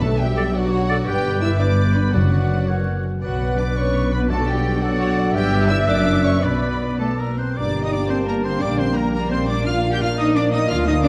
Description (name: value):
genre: classical, dramatic, fast romantic movement for symphony orchestra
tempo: 105-118 BPM (dotted quarters)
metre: 6/8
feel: rubato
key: B minor, G minor from 7.6 s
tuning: A4 = 441 Hz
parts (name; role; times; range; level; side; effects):
- rich symphonic violin section; melody; 0.0-11.1 s; F#5 to G6; -33 LUFS; equal; none
- rich symphonic violin section; second line; 0.0-11.1 s; F#4 to G5; -32 LUFS; equal; none
- rich studio viola section; accompaniment; 0.0-11.1 s; Bb3 to E5; -32 LUFS; equal; none
- mellow French horn section; sustained chords; 0.0-11.1 s; F#3 to Bb4; -28 LUFS; equal; none
- concert harp; arpeggios; 0.0-11.1 s; F#2 to D6; -30 LUFS; equal; none
- clear symphonic double bass section; bass; 0.0-11.1 s; F#1 to D2; -26 LUFS; equal; none
- rich symphonic cello section; bass; 0.0-11.1 s; F#2 to G4; -27 LUFS; equal; none
- timpani; percussion; 0.0-4.8 s; F#2 to B2; -27 LUFS; equal; none
- clear clarinet; second line; 0.4-7.4 s; A4 to B4; -35 LUFS; equal; none
- clear oboe; second line; 0.4-11.1 s; A4 to G5; -34 LUFS; equal; none
- mellow hollow silver concert flute; second line; 0.4-11.1 s; D5 to A6; -33 LUFS; equal; none
- bright trombone section; sustained chords; 7.6-11.1 s; F3 to Bb3; -31 LUFS; equal; none
room: wet scoring stage reverb, RT60 1.7 s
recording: vinyl crackle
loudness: -20 LUFS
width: mono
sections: 0.0-7.6 A section; 7.6-11.1 B section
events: none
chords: 0.0 D/B; 1.1 G; 2.1 Bm/F#; 2.7 F#; 3.2 Bm; 4.3 D/B; 5.3 G; 5.9 F#7; 6.4 Bm; 7.6 Gm; 8.6 Gm/Bb; 9.7 Bb